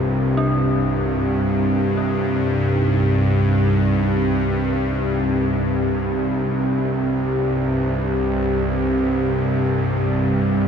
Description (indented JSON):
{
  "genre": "dark ambient drone",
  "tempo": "free time",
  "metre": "none",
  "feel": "none",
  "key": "C minor",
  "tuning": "A4 = 441 Hz",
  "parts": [
    { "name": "dark analog pad", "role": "sustained chords", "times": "0.0-10.7 s", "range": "C4 to D5", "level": "-23 LUFS", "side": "left 1 dB", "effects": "chorus" },
    { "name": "bowed-like drone", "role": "drone", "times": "0.0-10.7 s", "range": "C2 to G2", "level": "-19 LUFS", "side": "equal", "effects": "built-in reverb" },
    { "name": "bronze singing bowl", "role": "texture", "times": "0.0-10.7 s", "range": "Eb4 to F4", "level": "-36 LUFS", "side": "right 4 dB", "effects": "none" },
    { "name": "dark detuned synth bell", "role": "arpeggios", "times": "0.4-10.7 s", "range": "D4", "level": "-30 LUFS", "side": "left 1 dB", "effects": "chorus, ping-pong delay" }
  ],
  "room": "wet cathedral reverb, RT60 6.0 s",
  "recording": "dark, warm production",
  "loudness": "-18 LUFS",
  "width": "side -7 dB against mid",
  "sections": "0.0-10.7 A section",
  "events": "none",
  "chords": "0.0 Cm"
}